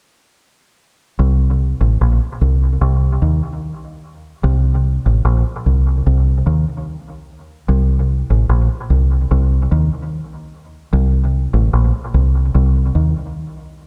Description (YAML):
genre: reggae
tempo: 74 BPM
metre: 4/4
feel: straight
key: C dorian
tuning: A4 = 441 Hz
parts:
  - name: deep dub fingered electric bass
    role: solo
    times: 1.2-13.1 s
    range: A1 to Eb2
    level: -16 LUFS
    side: equal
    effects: dub echo
room: moderate echo chamber reverb, RT60 2.1 s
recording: echo-heavy mix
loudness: -16 LUFS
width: mono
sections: 1.2-13.9 A section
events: none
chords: none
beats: | 1.19 2.00 2.81 3.62 | 4.43 5.24 6.05 6.86 | 7.67 8.48 9.29 10.11 | 10.92 11.73 12.54